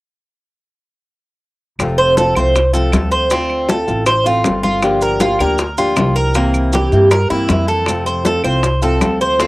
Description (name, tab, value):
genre	latin, Cuban son and guajira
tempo	158 BPM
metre	4/4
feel	straight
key	F major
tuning	A4 = 440 Hz
part	nylon-string guitar	accompaniment	1.8-9.5 s	C3 to G4	-20 LUFS	left 1 dB	cassette tape
part	upright bass	bass	1.8-9.5 s	F1 to G2	-19 LUFS	equal	none
part	bongos	percussion	1.8-9.5 s	none	-21 LUFS	left 3 dB	none
part	claves	percussion	1.8-9.2 s	none	-26 LUFS	right 3 dB	none
part	congas	percussion	1.8-9.5 s	none	-22 LUFS	left 2 dB	none
part	maracas	percussion	1.8-9.5 s	none	-29 LUFS	right 3 dB	none
part	Cuban tres	arpeggios	2.0-9.5 s	Bb3 to C5	-15 LUFS	right 1 dB	cassette tape
room	wet booth ambience, RT60 0.2 s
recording	home recording on cassette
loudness	-12 LUFS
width	side -20 dB against mid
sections	1.8-9.5 A section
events	none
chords	1.8 F; 3.3 Dm7; 4.8 Gm7; 6.4 C7; 7.9 F